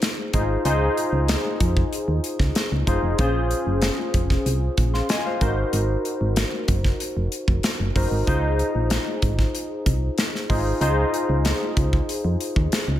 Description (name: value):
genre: polished 1980s jazz-funk pop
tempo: 94 BPM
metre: 4/4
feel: straight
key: Db major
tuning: A4 = 439 Hz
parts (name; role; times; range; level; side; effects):
- barky tine electric piano; accompaniment; 0.0-13.0 s; Db4 to C6; -25 LUFS; left 1 dB; analog chorus
- modern studio drum kit; drums; 0.0-12.9 s; hi-hat, kick drum, snare drum; -23 LUFS; equal; gated reverb
- solid FM bass; bass; 0.3-13.0 s; F1 to F2; -23 LUFS; equal; none
room: small room ambience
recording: none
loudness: -20 LUFS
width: side -12 dB against mid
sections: 0.0-13.0 A section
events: none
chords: 0.0 Dbmaj9; 3.2 Bbm9; 5.4 Ab9; 8.3 Dbmaj9